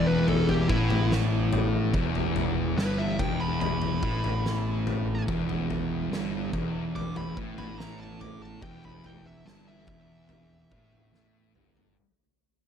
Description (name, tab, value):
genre	stoner and doom metal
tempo	72 BPM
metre	4/4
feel	straight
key	E minor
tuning	A4 = 440 Hz
part	fuzz lead guitar	melody	0.0-11.5 s	E4 to D6	-34 LUFS	right 2 dB	distortion, slapback echo
part	mellow tonewheel organ	sustained chords	0.0-11.9 s	E3 to E4	-39 LUFS	left 1 dB	none
part	thick fuzz guitar	riff	0.0-12.0 s	E2 to A2	-31 LUFS	left 7 dB	distortion
part	thick fuzz guitar	riff	0.0-12.0 s	E2 to A2	-32 LUFS	right 7 dB	distortion
part	fuzz picked electric bass	bass	0.0-11.9 s	E1 to A1	-33 LUFS	equal	overdrive
part	oversized low-tuned drum kit	drums	0.3-12.0 s	kick drum, snare drum, toms	-32 LUFS	left 1 dB	none
room	little or no reverb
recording	none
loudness	-25 LUFS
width	side -8 dB against mid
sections	0.0-12.0 A section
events	fade-out 0.0-12.0; lead electric guitar solo 0.0-12.0; drum fill 11.1-12.0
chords	0.0 Em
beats	0.28 1.11 | 1.94 2.77 3.61 4.44 | 5.27 6.11 6.95 7.78 | 8.62 9.46 10.29 11.13